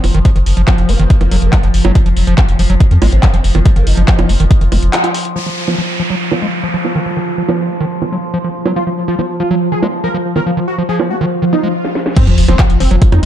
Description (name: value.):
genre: psychedelic trance.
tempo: 141 BPM.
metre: 4/4.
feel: straight.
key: F phrygian.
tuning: A4 = 440 Hz.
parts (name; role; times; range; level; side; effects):
formant-sweep wobble bass; second line; 0.0-4.3 s; Bb3 to Eb4; -29 LUFS; right 3 dB; lush chorus, cassette tape, sidechain pumping, high-pass filter, dub echo.
overtone-sweeping drone; sustained chords; 0.0-13.3 s; F3; -22 LUFS; equal; chorus, built-in reverb, sidechain pumping.
round analog bass; bass; 0.0-4.9, 12.3-13.3 s; F1 to F2; -11 LUFS; equal; none.
techno drum kit; drums; 0.0-13.3 s; bongos, crash cymbal, handclaps, hi-hat, snare drum; -20 LUFS; right 3 dB; low-pass filter on hats, low-pass filter on perc, low-pass filter on snare, low-pass filter on cymbals, low-pass filter on room.
overdriven acid bass; riff; 0.1-13.3 s; Eb3 to F4; -19 LUFS; equal; distortion, auto-pan, sidechain pumping, dub echo.
electronic kick drum; drums; 0.3-4.6, 12.2-13.1 s; none; -10 LUFS; equal; none.
downlifter, swell and sub drop; sound effects; 5.4-13.3 s; none; -21 LUFS; equal; none.
wide unison lead; melody; 8.8-13.3 s; F3 to Bb4; -17 LUFS; equal; phaser, sidechain pumping, dub echo.
room: light reverb, digital ambience.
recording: dark, warm production.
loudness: -11 LUFS.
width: side -11 dB against mid.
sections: 0.0-5.4 A section; 5.4-12.2 B section; 12.2-13.3 C section.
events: break 4.9-5.4; band accent 4.9; filter sweep on acid bass 5.4-12.2; swell 11.5-12.2; stop 11.7-12.2; drum fill 11.8-12.2; drop 12.2-13.3; impact 12.2-13.3.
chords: 0.0 F5.